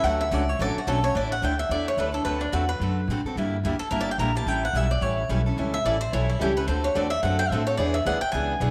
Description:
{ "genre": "acoustic string swing (jazz manouche)", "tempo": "217 BPM", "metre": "4/4", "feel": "swing 58% on 8ths", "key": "D major", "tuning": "A4 = 440 Hz", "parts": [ { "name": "picked swing-style acoustic guitar", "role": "second line", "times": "0.0-8.7 s", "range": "D4 to Bb5", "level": "-28 LUFS", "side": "equal", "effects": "none" }, { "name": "picked old ladder-braced acoustic guitar", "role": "accompaniment", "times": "0.0-1.0, 5.6-8.7 s", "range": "D3 to B4", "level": "-35 LUFS", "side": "equal", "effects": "none" }, { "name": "picked steel-string acoustic guitar", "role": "accompaniment", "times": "0.0-8.7 s", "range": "D3 to A4", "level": "-32 LUFS", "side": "equal", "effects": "none" }, { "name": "upright bass", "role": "bass", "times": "0.0-8.7 s", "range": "G1 to A2", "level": "-30 LUFS", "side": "equal", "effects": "none" } ], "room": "moderate echo chamber reverb, RT60 2.0 s, small room ambience", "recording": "none", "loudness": "-25 LUFS", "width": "mono", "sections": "0.0-1.1 A section; 1.1-8.7 A section", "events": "steel-string acoustic guitar solo 0.0-8.7", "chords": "0.0 Dmaj7; 1.1 Asus4; 2.3 D7; 3.4 Gm6; 4.5 A7; 6.7 D7; 7.8 E7" }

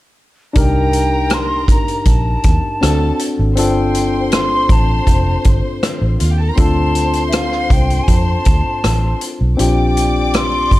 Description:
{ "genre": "lush 1970s-style soul", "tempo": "80 BPM", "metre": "4/4", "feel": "straight", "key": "C dorian", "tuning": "A4 = 440 Hz", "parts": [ { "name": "barky tine electric piano", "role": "accompaniment", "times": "0.5-10.8 s", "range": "C4 to Bb4", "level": "-20 LUFS", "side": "left 2 dB", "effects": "overdrive" }, { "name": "hollow concert flute", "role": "melody", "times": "0.6-10.8 s", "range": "E5 to C6", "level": "-20 LUFS", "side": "left 1 dB", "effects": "slapback echo" }, { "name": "warm studio violin section", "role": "second line", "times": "0.6-10.8 s", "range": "F4 to D6", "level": "-25 LUFS", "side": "left 1 dB", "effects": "none" }, { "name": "vintage muted fingered electric bass", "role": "bass", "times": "0.6-10.8 s", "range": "F1 to F2", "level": "-17 LUFS", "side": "equal", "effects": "none" }, { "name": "vintage drum kit", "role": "drums", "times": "0.6-10.8 s", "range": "hi-hat, kick drum, rim click", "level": "-16 LUFS", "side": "equal", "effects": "none" } ], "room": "little or no reverb", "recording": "none", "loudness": "-12 LUFS", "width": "side -17 dB against mid", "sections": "0.6-10.8 A section", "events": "none", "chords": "0.6 Cm9; 2.8 D7; 3.6 G9sus4; 6.6 Dm7; 9.6 Bb69" }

